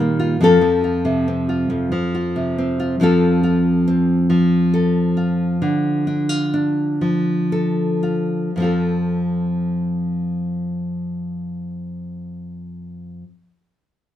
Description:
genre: folk, solo fingerstyle acoustic guitar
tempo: 36-48 BPM (dotted quarters)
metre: 6/8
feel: rubato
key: F major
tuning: A4 = 442 Hz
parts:
  - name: nylon-string guitar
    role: solo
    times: 0.0-13.3 s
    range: F2 to Bb4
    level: -17 LUFS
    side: equal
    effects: none
room: moderate studio reverb, RT60 0.7 s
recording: minimal, uncompressed stereo recording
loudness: -17 LUFS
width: side -11 dB against mid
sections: 0.0-3.0 A section; 3.0-8.5 B section; 8.5-11.8 C section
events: slowing down 3.0-8.5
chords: 0.4 F; 5.6 Dm; 8.5 F

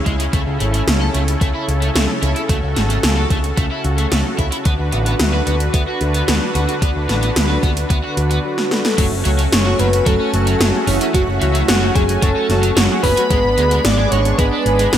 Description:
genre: synthwave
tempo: 111 BPM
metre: 4/4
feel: straight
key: F# minor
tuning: A4 = 439 Hz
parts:
  - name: soft supersaw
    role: sustained chords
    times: 0.0-15.0 s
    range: C#3 to B4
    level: -22 LUFS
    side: equal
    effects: sidechain pumping
  - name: overdriven electric guitar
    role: riff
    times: 0.1-15.0 s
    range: F#3 to B4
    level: -25 LUFS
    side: right 1 dB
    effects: lush chorus, digital delay
  - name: picked electric bass with an envelope filter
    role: bass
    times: 0.1-15.0 s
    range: F#1 to D2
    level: -18 LUFS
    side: equal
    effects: sidechain pumping
  - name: 80s electronic pad drums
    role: drums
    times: 0.1-15.0 s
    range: crash cymbal, hi-hat, snare drum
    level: -20 LUFS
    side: equal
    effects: overdrive, gated reverb
  - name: electronic kick drum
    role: drums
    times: 0.1-14.5 s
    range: none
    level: -18 LUFS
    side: equal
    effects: overdrive
  - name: warm velvety synth lead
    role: melody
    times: 8.4-15.0 s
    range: E4 to D5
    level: -20 LUFS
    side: equal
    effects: chorus, tremolo, digital delay
  - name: analog synth brass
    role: stabs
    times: 9.0-15.0 s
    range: F#3 to G#4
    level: -23 LUFS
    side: right 1 dB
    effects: chorus
  - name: airy dreamy lead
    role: second line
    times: 9.5-15.0 s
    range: E5 to D6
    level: -25 LUFS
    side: equal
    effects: chorus, digital delay
room: light reverb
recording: none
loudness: -14 LUFS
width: side -10 dB against mid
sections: 0.0-9.0 A section; 9.0-15.0 B section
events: drum fill 8.6-9.0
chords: 0.3 A; 4.7 Bm; 9.0 F#m; 13.3 G#dim

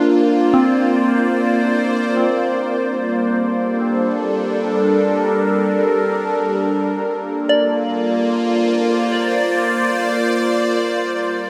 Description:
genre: ambient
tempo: free time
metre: none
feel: none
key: G minor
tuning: A4 = 440 Hz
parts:
  - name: evolving wavetable pad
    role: sustained chords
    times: 0.0-11.5 s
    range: G3 to D5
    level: -18 LUFS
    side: equal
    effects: phaser, built-in reverb
  - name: soft synth bell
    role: arpeggios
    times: 0.0-10.9 s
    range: C4 to D5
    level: -24 LUFS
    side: equal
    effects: chorus, phaser, diffuse ambient delay
room: wet huge ambient reverb, RT60 9.5 s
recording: none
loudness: -18 LUFS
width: mono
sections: 0.0-2.2 A section; 2.2-11.5 B section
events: fade-out on synth bell 2.2-11.5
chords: 0.0 Bb; 2.2 Gm7; 6.5 Bbmaj7; 10.9 Gm7

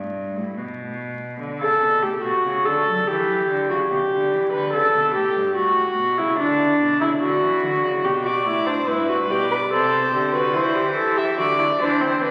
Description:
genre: classical, baroque-style fugue for string quartet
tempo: 72 BPM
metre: 4/4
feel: straight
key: G major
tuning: A4 = 440 Hz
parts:
  - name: dark cello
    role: bass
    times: 0.0-12.3 s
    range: G2 to F#3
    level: -30 LUFS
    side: equal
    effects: none
  - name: dark viola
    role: accompaniment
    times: 1.6-12.3 s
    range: C4 to B4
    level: -21 LUFS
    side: equal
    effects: none
  - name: dark violin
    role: second line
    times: 8.2-12.3 s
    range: B4 to E5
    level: -24 LUFS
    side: equal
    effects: none
room: wet concert hall reverb, RT60 2.1 s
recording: very old 78 rpm record, vinyl crackle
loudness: -20 LUFS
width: mono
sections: 0.0-12.3 A section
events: none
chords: 0.0 G; 1.4 D; 3.1 Em7; 4.7 A7; 6.4 D; 8.1 G; 9.7 Am7/C; 11.4 D7(no3)

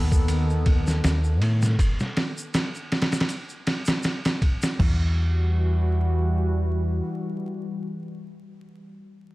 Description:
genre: trip hop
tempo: 80 BPM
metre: 4/4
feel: swing 55% on 16ths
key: E harmonic minor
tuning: A4 = 440 Hz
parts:
  - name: warbly tape-like pad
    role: sustained chords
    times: 0.0-8.6 s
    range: D#3 to A4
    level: -30 LUFS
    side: equal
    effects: chorus, built-in reverb
  - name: deep dub fingered electric bass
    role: bass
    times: 0.0-7.0 s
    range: D#2 to A2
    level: -22 LUFS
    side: equal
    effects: none
  - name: trip hop sampler-style drum kit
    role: drums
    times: 0.1-5.0 s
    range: crash cymbal, kick drum, ride cymbal, snare drum, toms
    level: -24 LUFS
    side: equal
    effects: small room ambience
  - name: tube shaker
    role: percussion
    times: 0.1-4.8 s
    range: none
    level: -40 LUFS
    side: equal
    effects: none
room: small room ambience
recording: dark, warm production, vinyl crackle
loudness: -22 LUFS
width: side -19 dB against mid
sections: 0.0-4.8 A section; 4.8-7.8 B section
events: none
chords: 0.0 B7/D#; 4.8 Emadd9

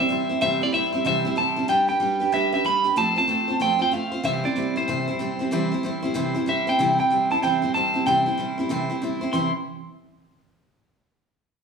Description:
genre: rock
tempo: 188 BPM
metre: 4/4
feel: swing 63% on 8ths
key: C major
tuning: A4 = 440 Hz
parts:
  - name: electric guitar at the edge of break-up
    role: melody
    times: 0.0-9.5 s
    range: C5 to C6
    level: -22 LUFS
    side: right 1 dB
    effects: phaser
  - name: picked steel-string acoustic guitar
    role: accompaniment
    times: 0.0-9.5 s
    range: C3 to C5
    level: -24 LUFS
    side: right 1 dB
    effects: none
room: wet large studio reverb, RT60 1.2 s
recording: band playing live in one room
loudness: -20 LUFS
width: side -5 dB against mid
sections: 0.0-6.8 A section; 6.8-9.3 B section; 9.3-10.6 C section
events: none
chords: 0.0 C; 1.7 G; 3.0 F; 4.2 C

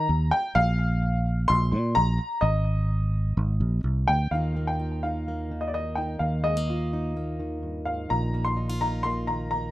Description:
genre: indie folk with a building arrangement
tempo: 127 BPM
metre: 4/4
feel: straight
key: Eb major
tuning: A4 = 440 Hz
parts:
  - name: warm upright piano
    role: melody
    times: 0.0-9.7 s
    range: D5 to C6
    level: -27 LUFS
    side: left 1 dB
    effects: none
  - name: fingered electric bass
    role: bass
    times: 0.0-9.7 s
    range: Ab1 to Bb2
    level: -26 LUFS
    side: equal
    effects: none
  - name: fingerpicked plugged-in steel-string acoustic guitar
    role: accompaniment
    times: 4.3-9.7 s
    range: Eb2 to F4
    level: -32 LUFS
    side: equal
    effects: none
room: little or no reverb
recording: rough home demo mix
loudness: -23 LUFS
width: side -16 dB against mid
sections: 0.0-4.3 A section; 4.3-9.7 B section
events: none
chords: 0.0 Eb5; 0.6 Bb5; 2.4 Ab5; 4.3 Ebsus2; 8.1 Bbsus4

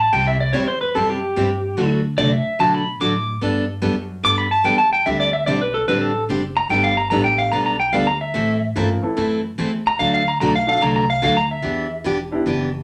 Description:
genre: country, western swing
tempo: 146 BPM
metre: 4/4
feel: swing 65% on 8ths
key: G major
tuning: A4 = 439 Hz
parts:
  - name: pedal steel guitar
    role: second line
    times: 0.0-11.9 s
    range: G4 to D6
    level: -21 LUFS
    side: equal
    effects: none
  - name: upright bass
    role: bass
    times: 0.0-12.8 s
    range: E1 to D3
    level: -28 LUFS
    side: equal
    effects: none
  - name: picked steel-string acoustic guitar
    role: accompaniment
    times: 0.1-12.7 s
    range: C3 to A4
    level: -24 LUFS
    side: equal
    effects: none
  - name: warm upright piano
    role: accompaniment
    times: 6.7-12.5 s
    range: E3 to Bb4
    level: -26 LUFS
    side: equal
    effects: none
room: wet studio reverb, RT60 0.5 s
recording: none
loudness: -19 LUFS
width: mono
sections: 0.0-12.8 A section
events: pedal steel guitar solo 0.0-12.8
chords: 0.1 C; 1.8 D; 3.4 Gadd9; 5.1 D7sus4; 6.7 Gadd9; 8.4 Am; 10.0 D; 11.6 Em7

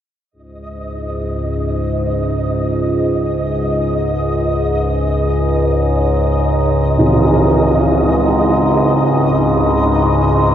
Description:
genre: dark ambient drone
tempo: free time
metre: none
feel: none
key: unclear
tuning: A4 = 440 Hz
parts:
  - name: overtone-sweeping drone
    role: drone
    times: 0.7-10.5 s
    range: C#2 to G#2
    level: -15 LUFS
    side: equal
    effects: chorus, built-in reverb
  - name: flickering grainy texture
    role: texture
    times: 0.6-10.5 s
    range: D#5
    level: -22 LUFS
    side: right 1 dB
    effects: built-in reverb
  - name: tam-tam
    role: percussion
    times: 7.0-7.2 s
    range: none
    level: -15 LUFS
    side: right 1 dB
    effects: low-pass filter on cymbals
room: wet huge ambient reverb, RT60 8.1 s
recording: dark, warm production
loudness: -13 LUFS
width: side -10 dB against mid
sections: 0.3-10.5 A section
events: none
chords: 0.3 C#sus2

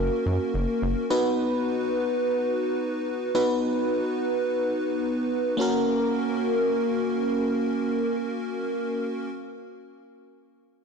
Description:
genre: pop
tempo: free time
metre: none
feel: none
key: F# major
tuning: A4 = 439 Hz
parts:
  - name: FM electric piano with soft pad layer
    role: accompaniment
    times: 0.0-9.3 s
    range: A#3 to B4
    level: -24 LUFS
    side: equal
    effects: chorus
  - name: rubbery square bass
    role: bass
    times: 0.0-0.9 s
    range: F#1 to F#2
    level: -26 LUFS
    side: equal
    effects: tube saturation
room: wet plate reverb, RT60 3.1 s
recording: blown-out, overdriven recording, overdrive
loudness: -23 LUFS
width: side -5 dB against mid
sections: 0.0-5.6 A section; 5.6-7.8 B section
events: none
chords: 0.0 F#; 1.1 B; 5.6 F#

